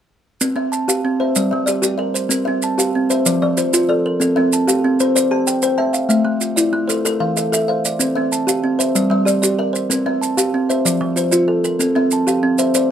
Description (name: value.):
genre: southern african traditional, mbira-style interlocking cycle.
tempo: 126 BPM (dotted quarters).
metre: 12/8.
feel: straight.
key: C mixolydian.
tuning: A4 = 440 Hz.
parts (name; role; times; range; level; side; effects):
kalimba; arpeggios; 0.4-12.9 s; F3 to A5; -18 LUFS; left 3 dB; none.
maracas; percussion; 0.4-12.9 s; none; -20 LUFS; right 4 dB; none.
kalimba; arpeggios; 0.6-12.9 s; E3 to A5; -18 LUFS; right 3 dB; none.
room: little or no reverb.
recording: dark, warm production.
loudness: -15 LUFS.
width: side -9 dB against mid.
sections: 0.4-12.9 A section.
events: none.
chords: 0.4 C; 1.4 Gm; 2.3 C; 3.3 F; 4.2 C; 6.1 Am; 8.0 C; 9.0 Gm; 9.9 C; 10.9 F; 11.8 C.